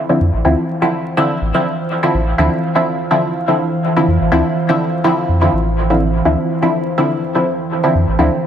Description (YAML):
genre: dub techno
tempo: 124 BPM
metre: 4/4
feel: swing 54% on 16ths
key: D minor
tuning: A4 = 440 Hz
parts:
  - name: deep dark ambient pad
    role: sustained chords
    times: 0.0-8.5 s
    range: E3 to G5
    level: -20 LUFS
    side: equal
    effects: chorus, built-in reverb, vintage 12-bit sampler grit
  - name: filtered dub chord stab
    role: stabs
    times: 0.1-8.4 s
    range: D3 to E4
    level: -15 LUFS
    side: equal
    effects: chorus, phaser, dub echo
  - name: pure sine sub bass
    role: bass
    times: 0.2-8.3 s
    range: A1 to F2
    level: -16 LUFS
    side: equal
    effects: none
room: light reverb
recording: echo-heavy mix, vinyl crackle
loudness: -13 LUFS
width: side -9 dB against mid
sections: 0.0-8.5 A section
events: none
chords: 0.0 Dm9